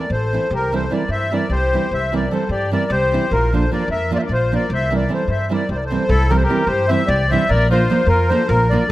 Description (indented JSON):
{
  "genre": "balkan folk",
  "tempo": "301 BPM (eighths)",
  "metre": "7/8",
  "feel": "straight",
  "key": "C mixolydian",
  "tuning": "A4 = 440 Hz",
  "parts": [
    { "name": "accordion", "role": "melody", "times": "0.0-8.9 s", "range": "A4 to E5", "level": "-20 LUFS", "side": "left 1 dB", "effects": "light tremolo tuning" },
    { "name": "mellow trumpet", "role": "second line", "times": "0.0-8.9 s", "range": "E4 to C5", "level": "-26 LUFS", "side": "left 3 dB", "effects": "tape echo" },
    { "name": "nylon-string guitar", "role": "accompaniment", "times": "0.0-8.8 s", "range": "E3 to Bb4", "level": "-22 LUFS", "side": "right 4 dB", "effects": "none" },
    { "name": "upright bass", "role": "bass", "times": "0.1-8.9 s", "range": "A1 to G2", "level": "-20 LUFS", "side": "equal", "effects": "none" }
  ],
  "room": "moderate recital hall reverb, RT60 1.4 s",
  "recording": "dark, warm production",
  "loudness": "-15 LUFS",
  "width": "side -16 dB against mid",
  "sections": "0.0-6.1 A section; 6.1-8.9 B section",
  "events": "none",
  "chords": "0.0 Am; 0.5 C; 3.3 Bb; 4.7 C; 7.5 Bb",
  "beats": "0.12 0.32 | 0.52 0.72 0.92 1.12 1.31 1.51 1.72 | 1.91 2.11 2.31 2.51 2.71 2.91 3.11 | 3.31 3.51 3.71 3.91 4.11 4.31 4.51 | 4.71 4.91 5.11 5.31 5.51 5.71 5.91 | 6.10 6.30 6.50 6.70 6.90 7.10 7.30 | 7.50 7.70 7.90 8.10 8.29 8.49 8.69 | 8.89"
}